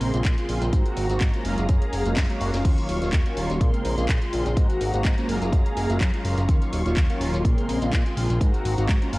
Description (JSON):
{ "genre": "filtered disco house", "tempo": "125 BPM", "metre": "4/4", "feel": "swing 54% on 16ths", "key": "Eb dorian", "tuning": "A4 = 440 Hz", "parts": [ { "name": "mellow synth brass", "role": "accompaniment", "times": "0.0-9.2 s", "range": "Db3 to Bb4", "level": "-27 LUFS", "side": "equal", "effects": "chorus, phaser, sidechain pumping, low-pass filter" }, { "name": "dark studio string section", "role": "sustained chords", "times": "0.0-9.2 s", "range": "Gb3 to Db6", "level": "-34 LUFS", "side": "equal", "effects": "sidechain pumping, low-pass filter" }, { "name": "fat analog bass", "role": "bass", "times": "0.0-9.2 s", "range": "Eb1 to Bb2", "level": "-26 LUFS", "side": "equal", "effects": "tube saturation, sidechain pumping, low-pass filter" }, { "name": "house drum kit", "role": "drums", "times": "0.0-9.2 s", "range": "crash cymbal, handclaps, hi-hat, snare drum", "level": "-33 LUFS", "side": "equal", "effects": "sidechain pumping on hats, cassette tape, sidechain pumping on cymbals" }, { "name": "tube shaker", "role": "percussion", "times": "0.1-9.1 s", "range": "none", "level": "-46 LUFS", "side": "left 2 dB", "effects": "none" }, { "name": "electronic kick drum", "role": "drums", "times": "0.2-9.0 s", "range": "none", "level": "-21 LUFS", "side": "equal", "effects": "cassette tape" } ], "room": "light reverb", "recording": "home recording on cassette", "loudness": "-20 LUFS", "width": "side -21 dB against mid", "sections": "0.0-9.2 A section", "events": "drum fill 2.2-2.6", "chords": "0.0 Bbm9; 0.7 Ab9; 1.4 Gbmaj9; 2.6 Ebm9; 3.6 Bbm9; 4.6 Ab9; 5.3 Gbmaj9; 6.5 Ebm9; 7.5 Bbm9; 8.4 Ab9" }